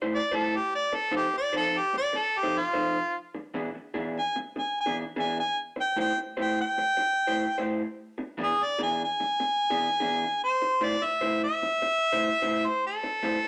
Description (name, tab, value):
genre	blues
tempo	99 BPM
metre	4/4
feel	swing 66% on 8ths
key	A minor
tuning	A4 = 437 Hz
part	electric guitar through a small old amp	riff	0.0-13.5 s	E3 to C5	-34 LUFS	equal	none
part	warm harmonica	melody	0.1-13.5 s	F4 to G#5	-28 LUFS	equal	overdrive
room	moderate studio reverb, RT60 0.8 s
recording	none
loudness	-28 LUFS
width	mono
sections	0.0-10.4 A section; 10.4-13.5 B section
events	harmonica solo 0.0-10.4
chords	0.0 Am7; 0.7 F7; 3.1 E7; 5.6 Am7; 8.0 E7; 10.4 Am7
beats	0.12 | 0.72 1.33 1.93 2.54 | 3.14 3.75 4.36 4.96 | 5.57 6.17 6.78 7.38 | 7.99 8.59 9.20 9.80 | 10.41 11.01 11.62 12.22 | 12.83 13.43